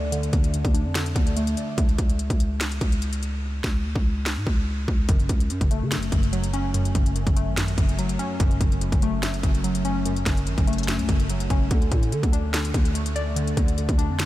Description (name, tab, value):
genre	hip hop, trap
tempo	145 BPM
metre	4/4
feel	half-time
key	F# minor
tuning	A4 = 440 Hz
part	glassy digital keys	accompaniment	0.0-1.8, 5.1-14.3 s	F#2 to D5	-27 LUFS	equal	chorus, low-pass filter
part	growling 808-style bass	bass	0.0-14.3 s	F#1 to D3	-26 LUFS	equal	none
part	trap drum kit	drums	0.1-14.3 s	finger snaps, hi-hat, kick drum, snare drum	-24 LUFS	equal	none
room	light reverb, digital ambience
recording	none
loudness	-21 LUFS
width	side -15 dB against mid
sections	0.0-14.3 A section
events	filter sweep on synth keys 0.0-5.1; hi-hats muted 3.4-5.1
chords	0.0 D5; 1.8 C#5; 5.1 F#m; 11.7 D5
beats	| 0.12 0.54 0.95 1.36 | 1.78 2.19 2.61 3.02 | 3.43 3.85 4.26 4.67 | 5.09 5.50 5.92 6.33 | 6.74 7.16 7.57 7.99 | 8.40 8.81 9.23 9.64 | 10.05 10.47 10.88 11.30 | 11.71 12.12 12.54 12.95 | 13.37 13.78 14.19